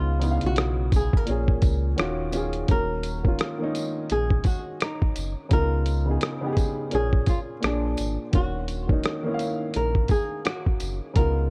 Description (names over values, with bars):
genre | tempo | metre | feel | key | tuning
lo-fi hip hop | 85 BPM | 4/4 | swing 60% on 16ths | Eb minor | A4 = 438 Hz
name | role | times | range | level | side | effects
flamenco guitar | melody | 0.0-11.5 s | D4 to Bb4 | -32 LUFS | equal | none
dark upright piano | accompaniment | 0.0-11.5 s | Bb2 to F5 | -32 LUFS | equal | none
sub bass with octave | bass | 0.0-11.5 s | Eb1 to Db2 | -29 LUFS | equal | none
dusty soul sampler-style drum kit | drums | 0.2-11.4 s | hi-hat, kick drum, rim click | -26 LUFS | equal | none
tambourine | percussion | 0.2-11.0 s | none | -47 LUFS | equal | none
room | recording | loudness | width
studio reverb | cassette tape | -25 LUFS | mono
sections
0.0-2.7 A section; 2.7-11.5 B section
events
none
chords
0.0 Db9; 1.3 Bbm7; 2.0 Ebm9; 2.7 Ebm7; 5.5 Db9; 6.9 Bbm7; 7.6 Bb7; 8.3 Ebm7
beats
0.57 1.28 1.98 | 2.69 3.39 4.10 4.80 | 5.51 6.22 6.92 7.63 | 8.34 9.04 9.75 10.45 | 11.16